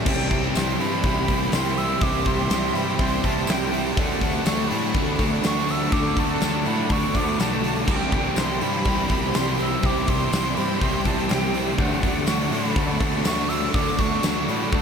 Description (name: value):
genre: rock, shoegaze and dream pop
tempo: 123 BPM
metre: 4/4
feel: straight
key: unclear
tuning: A4 = 441 Hz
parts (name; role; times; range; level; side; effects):
- phased string machine; sustained chords; 0.0-14.8 s; G4 to C#6; -32 LUFS; equal; ensemble chorus, phaser
- overdriven semi-hollow guitar; riff; 0.0-14.8 s; C3 to G4; -28 LUFS; right 7 dB; reverse reverb
- thick fuzz guitar; riff; 0.0-14.8 s; C3 to D4; -29 LUFS; left 6 dB; distortion, lush chorus
- bright silver concert flute; melody; 0.1-14.8 s; F#5 to E6; -28 LUFS; right 1 dB; analog delay
- distorted electric guitar; riff; 0.1-14.8 s; C3 to E4; -30 LUFS; equal; overdrive
- fuzz picked electric bass; bass; 0.1-14.8 s; B1 to A2; -28 LUFS; equal; overdrive
- huge arena drum kit; drums; 0.1-14.8 s; crash cymbal, hi-hat, kick drum, snare drum; -25 LUFS; equal; none
- tambourine; percussion; 0.6-14.3 s; none; -36 LUFS; left 15 dB; none
room: wet huge ambient reverb, RT60 7.5 s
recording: dreamy mix soaked in reverb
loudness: -20 LUFS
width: side -6 dB against mid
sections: 0.1-14.8 A section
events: none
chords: 0.1 C; 4.0 Dmaj7; 7.9 C; 11.8 Dmaj7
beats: | 0.06 0.55 1.04 1.53 | 2.02 2.51 3.00 3.49 | 3.98 4.46 4.95 5.44 | 5.93 6.42 6.91 7.40 | 7.88 8.37 8.86 9.35 | 9.84 10.32 10.81 11.30 | 11.79 12.28 12.76 13.25 | 13.74 14.23 14.71